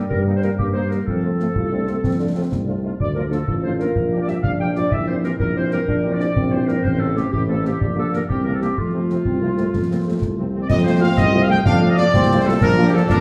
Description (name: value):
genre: military-style march for wind band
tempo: 125 BPM (dotted quarters)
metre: 6/8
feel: straight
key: F major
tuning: A4 = 440 Hz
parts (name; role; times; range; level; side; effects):
- warm euphonium; second line; 0.0-10.7 s; G3 to F4; -29 LUFS; equal; none
- mellow tuba; bass; 0.0-13.2 s; A1 to G2; -24 LUFS; equal; none
- warm woodwind section; second line; 0.1-13.2 s; F4 to G5; -27 LUFS; equal; none
- concert bass drum, concert snare drum and clash cymbals; drums; 0.1-13.2 s; none; -26 LUFS; equal; none
- clear trumpet section; melody; 0.3-13.2 s; C4 to G5; -29 LUFS; equal; none
- mellow French horn section; accompaniment; 0.3-13.0 s; C3 to F4; -29 LUFS; equal; none
- clear trombone section; sustained chords; 10.7-13.2 s; C4 to D4; -26 LUFS; equal; none
room: wet large studio reverb, RT60 1.4 s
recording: heard from further back in the room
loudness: -19 LUFS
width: mono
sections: 0.0-10.7 A section; 10.7-13.2 B section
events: none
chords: 0.0 Eb/G; 1.1 F; 3.0 Dm; 4.0 Gm7/Bb; 4.9 C7/Bb; 6.8 F/A; 7.8 Gm/Bb; 8.3 C9; 8.8 F; 12.6 Bb